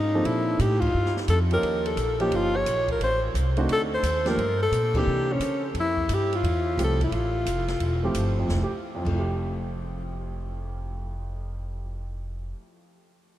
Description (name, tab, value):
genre	jazz, small-group swing and bop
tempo	175 BPM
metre	4/4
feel	swing 65% on 8ths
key	F major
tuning	A4 = 439 Hz
part	breathy alto saxophone	melody	0.0-8.1 s	Db4 to Db5	-25 LUFS	left 1 dB	none
part	upright bass	bass	0.0-12.5 s	E1 to Db3	-27 LUFS	equal	none
part	dark baby grand piano	accompaniment	0.1-12.7 s	F2 to A4	-31 LUFS	right 2 dB	none
part	open jazz drum kit	drums	0.3-9.1 s	crash cymbal, hi-hat, kick drum, ride cymbal, snare drum	-36 LUFS	right 1 dB	none
room	moderate huge ambient reverb, RT60 8.2 s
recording	in a vast, echoing space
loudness	-23 LUFS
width	side -13 dB against mid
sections	0.0-8.5 A section; 8.5-11.2 B section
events	band accent 0.8, 4.9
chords	0.3 Bbmaj9; 1.6 Eb9; 3.0 Adim7; 3.7 D7b9; 4.4 Gm; 5.1 C7b9; 5.7 Fmaj9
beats	| 0.25 0.60 0.94 1.28 | 1.63 1.97 2.32 2.66 | 3.00 3.35 3.69 4.03 | 4.38 4.72 5.06 5.41 | 5.75 6.09 6.43 6.78 | 7.12 7.46 7.81 8.15 | 8.49 8.84 9.18 9.52 | 9.86 10.21 10.55 10.89